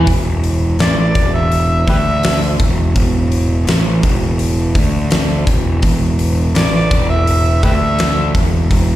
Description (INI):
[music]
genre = blues rock power trio and southern rock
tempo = 83 BPM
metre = 4/4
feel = straight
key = unclear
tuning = A4 = 440 Hz
[part]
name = fuzz picked electric bass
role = bass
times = 0.0-9.0 s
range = E1 to D2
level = -14 LUFS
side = equal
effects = overdrive
[part]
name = huge arena drum kit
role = drums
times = 0.1-8.9 s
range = hi-hat, kick drum, snare drum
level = -16 LUFS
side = equal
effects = none
[part]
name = warm harmonica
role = melody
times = 0.8-8.3 s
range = G4 to E5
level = -18 LUFS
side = equal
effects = overdrive, slapback echo
[sound]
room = little or no reverb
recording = live gig heard through the venue's PA, recital hall reverb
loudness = -12 LUFS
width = side -14 dB against mid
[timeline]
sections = 0.1-9.0 A section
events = harmonica solo 0.1-9.0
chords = 0.0 E7(no3)